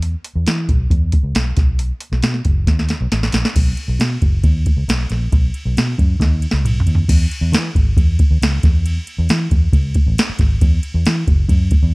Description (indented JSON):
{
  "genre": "uptempo 1960s-style soul",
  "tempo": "136 BPM",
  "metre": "4/4",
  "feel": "straight",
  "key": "unclear",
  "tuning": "A4 = 440 Hz",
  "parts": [
    { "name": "vintage muted fingered electric bass", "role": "bass", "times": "0.0-11.9 s", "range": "F#1 to E3", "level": "-17 LUFS", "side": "equal", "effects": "none" },
    { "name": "soft vintage rhythm box", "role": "drums", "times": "0.0-11.8 s", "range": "crash cymbal, hi-hat, kick drum, ride cymbal, snare drum, toms", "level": "-15 LUFS", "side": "equal", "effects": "none" }
  ],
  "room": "little or no reverb",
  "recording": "dark, warm production",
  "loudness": "-14 LUFS",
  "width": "side -26 dB against mid",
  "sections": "0.0-3.6 A section; 3.6-7.1 B section; 7.1-11.9 C section",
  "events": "drum fill 2.7-3.6, 6.2-7.1",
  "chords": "none",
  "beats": "| 0.03 0.47 0.91 1.35 | 1.80 2.24 2.68 3.12 | 3.56 4.00 4.45 4.89 | 5.33 5.77 6.21 6.65 | 7.09 7.53 7.97 8.41 | 8.85 9.29 9.73 10.18 | 10.62 11.06 11.50"
}